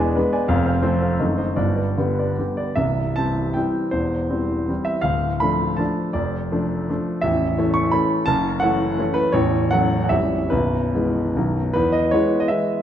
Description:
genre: classical, romantic triple-time dance for piano with dotted rhythms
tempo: 140-186 BPM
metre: 3/4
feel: rubato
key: C major, E major from 7.2 s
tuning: A4 = 439 Hz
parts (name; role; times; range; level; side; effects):
- warm grand piano; solo; 0.0-12.8 s; A0 to C#6; -18 LUFS; equal; none
room: wet recital hall reverb, RT60 1.8 s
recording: lossy compression artefacts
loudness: -18 LUFS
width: side -10 dB against mid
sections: 0.0-2.8 A section; 2.8-11.8 B section; 11.8-12.8 C section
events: none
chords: 0.5 F; 1.2 F#dim7; 1.6 G; 2.8 C; 3.9 C/E; 5.1 Dm; 6.2 Dm/F; 7.2 A; 8.3 F#m7; 9.3 F#m/A; 10.1 A#dim7; 10.5 E/B; 11.4 B; 11.8 E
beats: 0.16 | 0.49 0.83 1.20 | 1.58 1.99 2.39 | 2.77 3.17 3.56 | 3.92 4.30 4.69 | 5.05 5.42 5.80 | 6.15 6.51 6.88 | 7.23 7.58 7.93 | 8.28 8.62 8.99 | 9.34 9.72 10.12 | 10.52 10.94 11.36 | 11.76 12.13 12.50

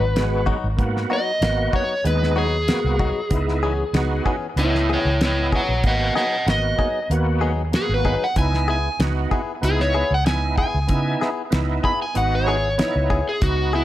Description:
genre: straight-eighth soul blues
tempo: 95 BPM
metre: 4/4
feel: swing 53% on 16ths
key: unclear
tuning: A4 = 443 Hz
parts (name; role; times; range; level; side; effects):
- overdriven slide guitar; melody; 0.0-13.8 s; E4 to B5; -23 LUFS; equal; none
- direct-recorded clean electric guitar; stabs; 0.0-13.8 s; E3 to G#4; -28 LUFS; left 5 dB; analog delay
- vintage muted fingered electric bass; bass; 0.0-13.8 s; G#1 to C#3; -22 LUFS; equal; none
- overdriven tonewheel organ; accompaniment; 0.2-13.8 s; G#3 to D#5; -27 LUFS; right 3 dB; slow rotary speaker, chorus vibrato
- damped 70s drum kit; drums; 0.2-13.6 s; hi-hat, kick drum, snare drum; -23 LUFS; equal; none
room: studio ambience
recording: none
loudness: -18 LUFS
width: side -14 dB against mid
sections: 0.0-13.8 A section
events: electric slide guitar solo 0.0-13.8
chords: 0.0 G#m7; 3.3 C#m7; 5.8 G#m7; 8.4 C#m7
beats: 0.16 | 0.79 1.42 2.05 2.68 | 3.31 3.94 4.58 5.21 | 5.84 6.47 7.10 7.73 | 8.37 9.00 9.63 10.26 | 10.89 11.53 12.16 12.79 | 13.43

